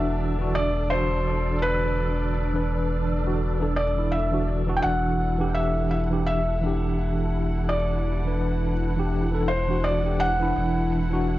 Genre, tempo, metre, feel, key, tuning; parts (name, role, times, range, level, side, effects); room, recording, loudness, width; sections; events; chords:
trip hop; 84 BPM; 4/4; swing 55% on 16ths; E minor; A4 = 440 Hz
felt-muted upright piano; melody; 0.0-11.4 s; B4 to G5; -28 LUFS; equal; tape echo
tine electric piano; accompaniment; 0.0-11.4 s; E3 to B4; -27 LUFS; equal; medium stereo tremolo, vintage 12-bit sampler grit, tape echo
string machine, cellos; sustained chords; 0.0-11.4 s; D4 to F#5; -33 LUFS; equal; ensemble chorus
warm sub bass; bass; 0.0-11.4 s; E1; -26 LUFS; equal; tube saturation
wind-like tuned noise texture; texture; 0.0-11.4 s; A4; -38 LUFS; right 3 dB; built-in reverb
moderate spring reverb, RT60 1.4 s; worn, warbling old tape, cassette tape, warbly pitch drift; -22 LUFS; side -15 dB against mid
0.0-11.4 A section
0.0 D/E; 4.8 Em7; 10.6 D/E